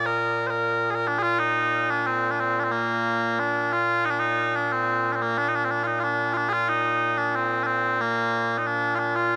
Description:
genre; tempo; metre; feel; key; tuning
scottish traditional, Scottish pipe music; 91 BPM; 2/4; straight; Bb major; A4 = 437 Hz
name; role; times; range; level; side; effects
mellow small bagpipes; solo; 0.0-9.4 s; Bb2 to C5; -24 LUFS; equal; none
room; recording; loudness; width
moderate huge ambient reverb, RT60 8.0 s; none; -24 LUFS; mono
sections
0.0-1.4 A section; 1.4-9.4 A section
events
none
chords
none

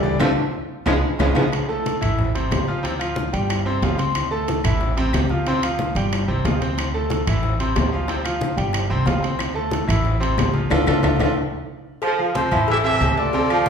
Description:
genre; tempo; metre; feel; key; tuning
latin, salsa; 183 BPM; 4/4; straight; unclear; A4 = 440 Hz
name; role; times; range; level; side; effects
clear trombone section; melody; 0.0-1.4 s; C3 to Ab3; -25 LUFS; equal; none
bright baby grand piano; accompaniment; 0.0-13.7 s; C3 to C6; -24 LUFS; equal; none
upright bass; bass; 0.0-13.7 s; G1 to D2; -24 LUFS; equal; none
congas; percussion; 0.0-13.7 s; none; -26 LUFS; left 1 dB; none
bright trombone section; second line; 0.2-1.4, 12.0-13.7 s; Db3 to A3; -27 LUFS; right 3 dB; none
bongos and cowbell; percussion; 0.2-13.7 s; none; -28 LUFS; left 2 dB; none
claves; percussion; 0.2-13.7 s; none; -34 LUFS; left 5 dB; none
timbales and agogo bells; percussion; 0.2-13.7 s; none; -27 LUFS; right 2 dB; none
warm trumpet section; melody; 12.4-13.7 s; F4 to E5; -22 LUFS; equal; none
room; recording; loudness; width
wet large studio reverb, RT60 1.2 s; heard from further back in the room; -18 LUFS; side -7 dB against mid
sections
0.0-1.5 A section; 1.5-12.0 B section; 12.0-13.7 C section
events
drum fill 0.2-1.5, 11.2-12.0; band accent 0.2-1.5, 10.7-12.0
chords
0.2 Dm7; 0.9 Db7; 1.5 A5; 2.2 Am; 2.8 G7sus4; 4.2 D5; 4.8 Am; 5.5 G7sus4; 6.8 D5; 7.4 Am; 8.1 G7sus4; 9.4 D5; 10.1 Am; 10.7 Dm; 11.4 N.C.; 12.0 Fmaj7; 12.7 Am7

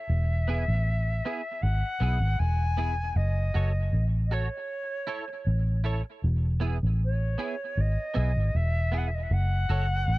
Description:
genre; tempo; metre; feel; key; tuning
roots reggae; 78 BPM; 4/4; straight; E major; A4 = 439 Hz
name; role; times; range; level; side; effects
silver concert flute; melody; 0.0-10.2 s; C#5 to G#5; -33 LUFS; left 1 dB; tape echo
vintage muted fingered electric bass; bass; 0.1-10.2 s; E1 to B1; -25 LUFS; equal; none
clean electric guitar; accompaniment; 0.5-9.9 s; B3 to C#5; -37 LUFS; right 4 dB; ensemble chorus, tape echo
room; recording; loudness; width
little or no reverb; dry, close 1970s-style studio recording; -25 LUFS; side -19 dB against mid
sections
0.0-10.2 A section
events
none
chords
0.1 E; 3.2 F#m; 4.7 A; 6.2 E; 9.3 F#m

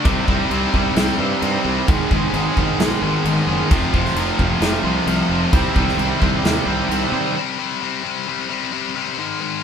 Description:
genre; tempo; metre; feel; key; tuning
quiet-loud alternative rock; 131 BPM; 4/4; straight; C minor; A4 = 439 Hz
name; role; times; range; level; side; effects
distorted electric guitar; riff; 0.0-7.4 s; Ab2 to G4; -24 LUFS; equal; distortion
scooped high-gain guitar; riff; 0.0-9.6 s; F2 to C4; -22 LUFS; left 7 dB; distortion
tight distorted guitar; riff; 0.0-7.3 s; F2 to C4; -23 LUFS; right 7 dB; distortion
fuzz fingered electric bass; bass; 0.1-7.3 s; F1 to C3; -24 LUFS; equal; overdrive
big rock drum kit; drums; 0.1-7.0 s; crash cymbal, kick drum, snare drum; -21 LUFS; equal; none
room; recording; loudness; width
light reverb; band playing live in one room; -16 LUFS; side -7 dB against mid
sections
0.0-7.4 A section; 7.4-9.6 A section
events
none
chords
0.1 Cm; 1.9 Abm; 3.7 F; 5.5 Cm; 7.4 C5

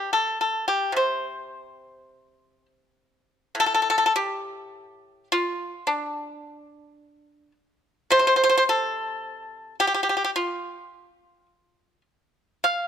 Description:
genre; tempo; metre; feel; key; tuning
chinese traditional, Chinese solo plucked strings; 50-55 BPM; 2/4; rubato; C zhi mode; A4 = 441 Hz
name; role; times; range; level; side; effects
pipa; solo; 0.0-12.9 s; A2 to F5; -21 LUFS; equal; none
room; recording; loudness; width
light reverb; close, detailed microphones; -21 LUFS; side -8 dB against mid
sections
0.0-3.6 A section; 3.6-12.9 B section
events
none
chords
none

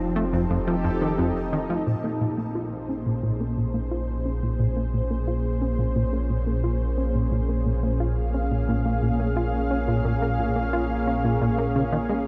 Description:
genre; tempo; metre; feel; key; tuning
ambient, sequencer-driven space music; 88 BPM; 4/4; straight; Bb minor; A4 = 440 Hz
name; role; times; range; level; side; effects
lush unison pad; sustained chords; 0.0-12.3 s; Bb2 to F5; -29 LUFS; equal; chorus
thumb-piano-like synth pluck; arpeggios; 0.0-1.9 s; F3 to C5; -36 LUFS; equal; none
warm sub bass; bass; 0.0-12.3 s; F1 to Bb1; -31 LUFS; equal; none
pulsing gated texture; texture; 0.0-1.9 s; A5; -48 LUFS; equal; chorus, built-in reverb
plucky analog bass; riff; 0.2-12.1 s; F2 to F4; -29 LUFS; equal; analog delay
room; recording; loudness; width
moderate huge ambient reverb, RT60 7.3 s; dark, warm production; -25 LUFS; mono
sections
0.0-1.9 A section; 1.9-12.3 B section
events
filter sweep on analog synth bass 1.9-12.3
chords
0.0 F7; 1.9 Bbm7

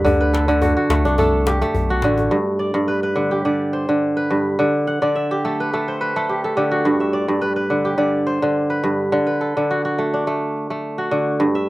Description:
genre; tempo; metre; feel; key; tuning
west african traditional, West African string and xylophone music; 106 BPM; 4/4; straight; G major; A4 = 440 Hz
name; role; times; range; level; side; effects
kora; arpeggios; 0.0-11.7 s; G2 to F#5; -17 LUFS; equal; none
fingered electric bass; bass; 0.0-2.3 s; A1 to D2; -20 LUFS; left 1 dB; none
djembe; percussion; 0.1-2.3 s; none; -27 LUFS; left 3 dB; none
room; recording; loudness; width
little or no reverb; recorded outdoors, with no room sound; -17 LUFS; side -18 dB against mid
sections
0.0-2.3 A section; 2.3-11.7 B section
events
kora fill 4.9-6.8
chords
0.1 D; 2.3 G; 4.6 D5; 6.8 G; 9.1 D

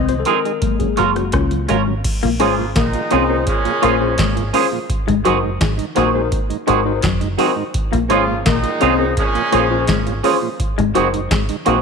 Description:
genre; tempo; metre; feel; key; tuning
lovers rock reggae; 84 BPM; 4/4; straight; Bb minor; A4 = 437 Hz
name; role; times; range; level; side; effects
tine electric piano; accompaniment; 0.0-11.8 s; Eb3 to Eb5; -22 LUFS; left 10 dB; overdrive, fast stereo tremolo, slapback echo
electric guitar through a small old amp; riff; 0.0-11.8 s; Gb3 to Db4; -23 LUFS; left 12 dB; wide subtle chorus
deep dub fingered electric bass; bass; 0.0-11.8 s; Gb1 to Db2; -22 LUFS; right 1 dB; none
tonewheel organ; accompaniment; 0.1-11.7 s; F2 to F4; -25 LUFS; right 13 dB; stopped rotary speaker, tube saturation
booming analog drum machine; drums; 0.1-11.8 s; crash cymbal, hi-hat, kick drum, rim click, snare drum; -21 LUFS; right 1 dB; none
twangy electric guitar; stabs; 0.3-11.8 s; C4 to Bb4; -21 LUFS; right 12 dB; phaser
clear horn section; second line; 2.4-10.2 s; Bb2 to F4; -22 LUFS; right 2 dB; none
room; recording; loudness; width
moderate echo chamber reverb, RT60 2.2 s; 1960s-style stereo with parts hard left and right; -15 LUFS; side -5 dB against mid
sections
0.0-2.0 A section; 2.0-11.8 B section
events
tine electric piano solo 0.0-2.0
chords
0.0 Fm7; 0.6 Gbmaj7; 2.0 Bbm7; 4.9 Ab7; 7.7 Bbm7; 10.6 Ab7

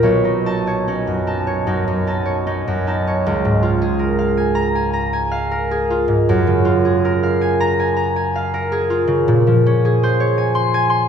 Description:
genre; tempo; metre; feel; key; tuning
classical, solo harp piece; 71-84 BPM; 4/4; rubato; Db major; A4 = 440 Hz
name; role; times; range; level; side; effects
concert harp; solo; 0.0-11.1 s; Cb2 to C6; -15 LUFS; equal; none
room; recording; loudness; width
wet concert hall reverb, RT60 1.8 s; heard from further back in the room; -15 LUFS; side -7 dB against mid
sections
0.0-3.3 A section; 3.3-11.1 A section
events
none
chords
0.0 Cb9; 3.3 Db6; 6.3 Gbmaj9; 9.3 Bbm9

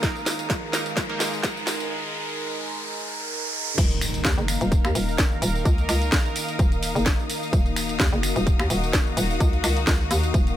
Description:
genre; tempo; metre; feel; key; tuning
bass house; 128 BPM; 4/4; swing 55% on 16ths; Eb minor; A4 = 440 Hz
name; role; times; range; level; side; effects
sweeping resonant pad; sustained chords; 0.0-10.6 s; Eb3 to Bb4; -31 LUFS; left 1 dB; chorus, sidechain pumping
band-passed chord stab; stabs; 0.0-1.3 s; Bb3 to Bb4; -33 LUFS; right 4 dB; chorus, sidechain pumping, digital delay
electronic kick drum; drums; 0.0-10.4 s; none; -22 LUFS; equal; none
house drum kit; drums; 0.0-10.6 s; crash cymbal, finger snaps, hi-hat, ride cymbal, snare drum, tambourine; -27 LUFS; equal; none
riser and impact; sound effects; 0.0-5.7 s; none; -30 LUFS; equal; none
bright studio string section; texture; 0.0-10.6 s; Eb4 to Eb6; -33 LUFS; left 1 dB; sidechain pumping
hollow knocking FM bass; bass; 3.8-10.6 s; Eb1 to Eb2; -25 LUFS; equal; overdrive, sidechain pumping
room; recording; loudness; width
little or no reverb; high-pass filter; -21 LUFS; side -12 dB against mid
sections
0.0-3.8 A section; 3.8-10.6 B section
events
build-up 0.0-3.8; drum fill 0.0-1.9; riser 0.0-3.8; filter sweep 0.0-3.8; break 1.9-3.8; drop 3.8-10.6; impact 3.8-5.7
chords
0.0 Eb5

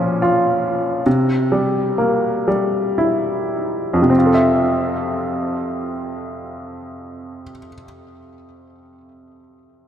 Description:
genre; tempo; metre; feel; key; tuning
folk; 49-73 BPM; 3/4; straight; F major; A4 = 440 Hz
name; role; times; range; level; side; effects
bright baby grand piano; melody; 0.0-9.9 s; F2 to E5; -17 LUFS; equal; analog delay
room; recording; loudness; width
wet plate reverb, RT60 3.1 s; dreamy mix soaked in reverb; -16 LUFS; side -9 dB against mid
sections
0.0-4.1 A section; 4.1-7.8 B section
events
slowing down 0.0-4.1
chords
0.0 Bbm; 1.1 C7; 4.1 Fmaj7

